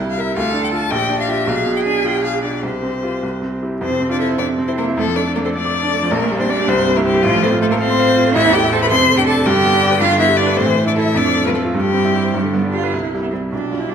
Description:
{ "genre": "quick classical-period movement for piano trio", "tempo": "100-110 BPM (dotted quarters)", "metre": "6/8", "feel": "rubato", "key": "F major, C major from 8.4 s", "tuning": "A4 = 437 Hz", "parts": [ { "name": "warm cello", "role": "second line", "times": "0.0-13.9 s", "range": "F3 to C5", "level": "-20 LUFS", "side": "right 6 dB", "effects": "none" }, { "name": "clear baby grand piano", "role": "accompaniment", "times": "0.0-13.9 s", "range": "A1 to D6", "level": "-18 LUFS", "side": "right 1 dB", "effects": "none" }, { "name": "rich violin", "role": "melody", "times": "0.1-13.9 s", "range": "F4 to C6", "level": "-19 LUFS", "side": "left 8 dB", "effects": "none" } ], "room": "wet recital hall reverb, RT60 1.5 s", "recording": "none", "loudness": "-14 LUFS", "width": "side -8 dB against mid", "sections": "0.0-3.8 A section; 3.8-12.9 B section; 12.9-13.9 C section", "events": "none", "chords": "0.4 Dm; 0.9 Gm7/Bb; 1.5 Bdim7; 2.6 Csus4; 3.2 C; 3.8 F; 4.4 C/F; 5.0 Dm/F; 6.1 Gm/Bb; 6.7 C; 7.2 F/A; 8.4 Am; 8.9 Dm7/F; 9.5 G; 10.6 Am; 11.2 Dm/F; 11.7 C/G; 12.3 G; 12.9 C" }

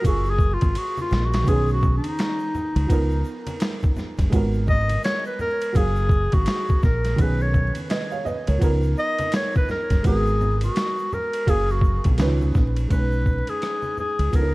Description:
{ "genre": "hip hop, jazz-hop", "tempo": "84 BPM", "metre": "4/4", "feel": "swing 60% on 16ths", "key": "unclear", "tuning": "A4 = 442 Hz", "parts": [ { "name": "clear clarinet", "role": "melody", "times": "0.0-14.5 s", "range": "D#4 to D#5", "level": "-26 LUFS", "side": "left 1 dB", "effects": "tape echo" }, { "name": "dark upright piano", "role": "accompaniment", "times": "0.0-14.5 s", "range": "D#3 to E#5", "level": "-28 LUFS", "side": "right 3 dB", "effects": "none" }, { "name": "deep dub fingered electric bass", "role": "bass", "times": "0.0-14.5 s", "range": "F#1 to C#2", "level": "-22 LUFS", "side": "equal", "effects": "none" }, { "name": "boom bap sampler-style drum kit", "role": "drums", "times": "0.0-14.5 s", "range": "hi-hat, kick drum, ride cymbal, rim click, snare drum", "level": "-23 LUFS", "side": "equal", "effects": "none" }, { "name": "tube shaker and congas", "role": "percussion", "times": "0.0-14.5 s", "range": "none", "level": "-35 LUFS", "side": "left 1 dB", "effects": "none" } ], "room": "small room ambience", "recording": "dark, warm production, vinyl crackle", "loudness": "-19 LUFS", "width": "side -21 dB against mid", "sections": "0.0-12.9 A section; 12.9-14.5 B section", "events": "clarinet solo 0.0-12.9; drum fill 0.8-1.5", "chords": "0.0 F#maj9; 1.5 B69; 2.9 C#13; 4.3 G#m9; 5.8 F#maj9; 7.2 B69; 8.6 C#13; 10.0 G#m9; 11.5 F#maj9; 12.2 C#9; 12.9 B69" }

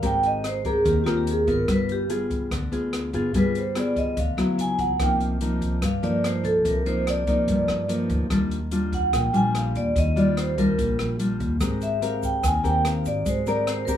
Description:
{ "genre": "bossa nova", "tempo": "145 BPM", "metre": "4/4", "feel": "straight", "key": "unclear", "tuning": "A4 = 440 Hz", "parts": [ { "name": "vibraphone with medium hard mallets", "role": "melody", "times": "0.0-14.0 s", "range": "F4 to Ab5", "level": "-25 LUFS", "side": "right 1 dB", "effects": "plate reverb" }, { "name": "nylon-string guitar", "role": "accompaniment", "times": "0.0-14.0 s", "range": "G2 to Bb4", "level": "-25 LUFS", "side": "left 1 dB", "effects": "none" }, { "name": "upright bass", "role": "bass", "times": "0.0-14.0 s", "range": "G1 to G2", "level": "-28 LUFS", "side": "equal", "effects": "none" }, { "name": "open jazz drum kit", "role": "drums", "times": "0.0-14.0 s", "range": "hi-hat, kick drum, rim click", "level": "-31 LUFS", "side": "equal", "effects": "none" }, { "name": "egg shaker", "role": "percussion", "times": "11.6-14.0 s", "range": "none", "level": "-41 LUFS", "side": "right 9 dB", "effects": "none" } ], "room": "light reverb", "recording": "small room ambience", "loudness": "-21 LUFS", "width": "side -10 dB against mid", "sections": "0.0-14.0 A section", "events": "vibraphone solo 0.0-14.0", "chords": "0.0 Abmaj9; 1.7 G7b9; 4.6 Dbm7; 5.0 Cm11; 8.3 Ebmaj9; 11.6 Abmaj9" }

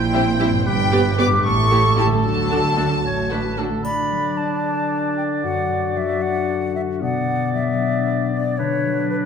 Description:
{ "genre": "cinematic, playful, whimsical film cue", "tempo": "76 BPM (dotted quarters)", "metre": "6/8", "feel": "straight", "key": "D major", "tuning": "A4 = 441 Hz", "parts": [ { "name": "rich studio violin section", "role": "melody", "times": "0.0-3.6 s", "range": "G5 to D6", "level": "-25 LUFS", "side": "left 3 dB", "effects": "none" }, { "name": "clear clarinet", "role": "second line", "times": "0.0-9.3 s", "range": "B3 to G4", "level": "-26 LUFS", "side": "equal", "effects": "none" }, { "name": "mellow silver concert flute", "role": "second line", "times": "0.0-9.2 s", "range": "B4 to D6", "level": "-24 LUFS", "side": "left 2 dB", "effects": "none" }, { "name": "warm oboe", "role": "second line", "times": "0.0-9.3 s", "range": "A4 to D5", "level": "-26 LUFS", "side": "left 1 dB", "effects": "none" }, { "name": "concert harp", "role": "arpeggios", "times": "0.0-9.3 s", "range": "F#2 to C5", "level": "-26 LUFS", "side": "left 8 dB", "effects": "none" }, { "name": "clear studio double bass section", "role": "bass", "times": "0.0-3.7 s", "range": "G1 to D2", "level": "-25 LUFS", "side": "right 6 dB", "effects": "none" }, { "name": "warm symphonic cello section", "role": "bass", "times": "0.0-3.7 s", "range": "G2 to D3", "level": "-23 LUFS", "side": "right 4 dB", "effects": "none" }, { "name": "clear chamber violin section", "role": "second line", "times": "0.1-3.6 s", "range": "F#4 to D5", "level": "-32 LUFS", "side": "left 3 dB", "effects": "none" }, { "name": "rich chamber viola section", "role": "accompaniment", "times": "0.1-3.7 s", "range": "G3 to G4", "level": "-27 LUFS", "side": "right 2 dB", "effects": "none" }, { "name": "mellow French horn section", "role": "sustained chords", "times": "0.1-3.7 s", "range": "A3 to G4", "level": "-28 LUFS", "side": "equal", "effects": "none" }, { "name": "triangle", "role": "percussion", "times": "3.8-4.9 s", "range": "none", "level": "-47 LUFS", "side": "left 1 dB", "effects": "none" } ], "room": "wet scoring stage reverb, RT60 1.8 s", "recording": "none", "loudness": "-17 LUFS", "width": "side -7 dB against mid", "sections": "0.0-3.8 A section; 3.8-9.3 B section", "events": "none", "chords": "0.0 C7/Bb; 0.7 G; 1.4 A7; 2.2 D; 5.4 D/F#; 7.0 Bm; 8.6 Bm/D" }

